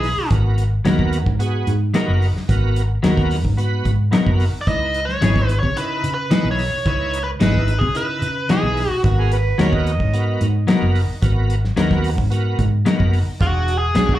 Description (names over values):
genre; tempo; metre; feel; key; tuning
straight-eighth soul blues; 110 BPM; 4/4; straight; G# minor; A4 = 440 Hz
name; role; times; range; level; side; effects
biting lead guitar; melody; 0.0-0.3, 4.6-9.0, 13.4-14.2 s; F#4 to D#5; -22 LUFS; equal; overdrive, plate reverb, slapback echo
bright tonewheel organ; accompaniment; 0.0-14.2 s; B3 to B4; -26 LUFS; right 3 dB; overdrive, chorus vibrato, slow rotary speaker, plate reverb, slapback echo
vintage muted fingered electric bass; bass; 0.0-14.2 s; E1 to C#3; -19 LUFS; equal; none
warm soul drum kit; drums; 0.0-14.2 s; hi-hat, kick drum, snare drum; -21 LUFS; equal; none
clean electric guitar; stabs; 0.8-14.1 s; E3 to A#4; -23 LUFS; left 4 dB; spring reverb, plate reverb, slapback echo
overdriven harmonica; second line; 9.1-10.4 s; F#4 to D#5; -27 LUFS; right 5 dB; plate reverb, slapback echo, analog delay
room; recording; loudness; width
light reverb; live gig heard through the venue's PA, club reverb; -16 LUFS; side -14 dB against mid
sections
0.0-14.2 A section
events
none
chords
0.3 G#m9; 4.7 C#m9; 9.0 G#m9; 13.4 E7